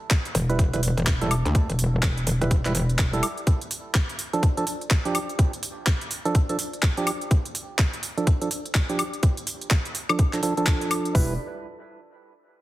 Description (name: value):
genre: bass house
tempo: 125 BPM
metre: 4/4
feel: swing 61% on 16ths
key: unclear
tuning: A4 = 442 Hz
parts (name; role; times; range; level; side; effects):
- garage drum kit; drums; 0.1-11.3 s; hi-hat, kick drum; -22 LUFS; equal; none
- garage drum kit; drums; 0.1-11.1 s; handclaps, hi-hat, woodblock; -28 LUFS; left 1 dB; none
- metallic wobble bass; bass; 0.3-3.2, 11.1-11.4 s; E1 to D2; -24 LUFS; equal; distortion, chorus, sidechain pumping
- percussive organ stab; stabs; 0.5-11.3 s; F3 to B4; -28 LUFS; right 3 dB; chorus, sidechain pumping, dub echo
room: light reverb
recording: heavily compressed radio sound, multiband compression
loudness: -21 LUFS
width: side -16 dB against mid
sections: 0.0-11.1 A section; 11.1-12.6 B section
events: filter sweep on synth stab 0.0-11.1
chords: 0.0 Em; 3.5 Dm; 11.1 Em